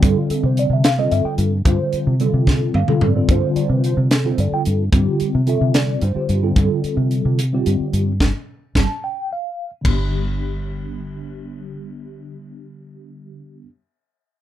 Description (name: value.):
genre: electric jazz fusion.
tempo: 73 BPM (dotted quarters).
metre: 6/8.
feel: straight.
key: unclear.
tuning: A4 = 437 Hz.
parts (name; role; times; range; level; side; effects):
mellow tine electric piano; accompaniment; 0.0-13.7 s; D3 to A5; -21 LUFS; equal; medium stereo tremolo, phaser.
deep dub fingered electric bass; bass; 0.0-13.7 s; G1 to C3; -19 LUFS; equal; none.
crisp fusion drum kit; drums; 0.0-10.0 s; crash cymbal, hi-hat, kick drum, snare drum, toms; -19 LUFS; equal; none.
room: little or no reverb.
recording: none.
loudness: -16 LUFS.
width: side -12 dB against mid.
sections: 0.0-9.8 A section; 9.8-13.1 B section.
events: drum fill 2.5-3.3, 9.0-9.8; tine electric piano fill 2.5-3.3; band accent 8.2-9.8.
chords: 0.0 G9sus4; 9.8 G.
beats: | 0.02 0.84 | 1.66 2.47 | 3.29 4.11 | 4.93 5.75 | 6.56 7.38 | 8.20 9.03 | 9.85 10.67 | 11.49 12.31.